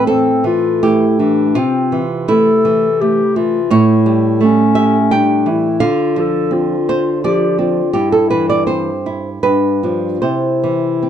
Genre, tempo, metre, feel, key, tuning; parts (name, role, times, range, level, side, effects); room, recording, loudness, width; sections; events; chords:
romantic duo for clarinet and classical guitar; 71-87 BPM; 3/4; rubato; A4 = 441 Hz
dark clarinet; melody; 0.0-11.1 s; C4 to A4; -16 LUFS; left 6 dB; plate reverb
nylon-string guitar; accompaniment; 0.0-11.1 s; G2 to G5; -14 LUFS; right 4 dB
moderate studio ambience, RT60 0.5 s; dark, warm production; -12 LUFS; side -9 dB against mid
0.0-11.1 A section
0.0 Am; 1.6 Am/C; 3.7 A7; 5.8 Dm7; 7.9 C/G; 9.4 G7; 10.2 C